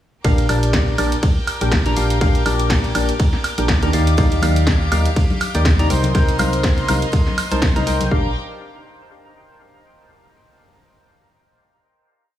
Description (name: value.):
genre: piano house.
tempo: 122 BPM.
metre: 4/4.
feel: swing 56% on 16ths.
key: Bb major.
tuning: A4 = 441 Hz.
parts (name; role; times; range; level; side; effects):
clear studio violin section; sustained chords; 0.2-8.3 s; G4 to D6; -29 LUFS; left 1 dB; sidechain pumping.
percussive organ stab; riff; 0.2-8.3 s; Bb2 to Bb5; -21 LUFS; left 1 dB; lush chorus, sidechain pumping, dub echo.
organ-like FM bass; bass; 0.2-8.3 s; Bb1 to Eb2; -20 LUFS; equal; sidechain pumping.
electronic kick drum; drums; 0.2-8.2 s; none; -17 LUFS; equal; none.
punchy analog drum machine; drums; 0.2-8.1 s; hi-hat, ride cymbal, snare drum, woodblock; -23 LUFS; right 1 dB; none.
tambourine and congas; percussion; 4.2-8.1 s; none; -28 LUFS; left 4 dB; none.
room: digital ambience.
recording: studio reverb.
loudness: -15 LUFS.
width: side -12 dB against mid.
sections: 0.2-8.1 drop; 8.1-10.1 final chord.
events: drop 0.2-8.1.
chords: 0.2 Bb6; 3.9 Ebmaj9; 5.9 Cm7; 8.1 Bb6.